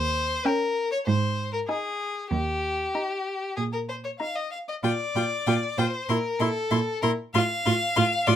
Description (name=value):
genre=quick classical-period movement for string quartet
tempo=96 BPM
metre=4/4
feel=rubato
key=F major from 4.8 s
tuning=A4 = 440 Hz
part: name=clear violin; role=second line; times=0.0-8.4 s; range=G4 to F5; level=-27 LUFS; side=left 3 dB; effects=none
part: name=rich cello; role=bass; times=0.0-8.4 s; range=Eb2 to Bb2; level=-27 LUFS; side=right 4 dB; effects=none
part: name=clear violin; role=melody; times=0.5-8.3 s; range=G5 to C6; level=-30 LUFS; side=left 8 dB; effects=none
part: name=rich viola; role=accompaniment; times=0.5-8.4 s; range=Db4 to F4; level=-29 LUFS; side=right 1 dB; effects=none
room=light reverb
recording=close, detailed microphones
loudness=-24 LUFS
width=side -10 dB against mid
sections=0.0-8.4 A section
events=none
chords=0.0 Eb7; 1.1 Ab5; 2.3 Eb; 4.8 Gm7/Bb; 6.1 C7/Bb (rootless); 7.3 F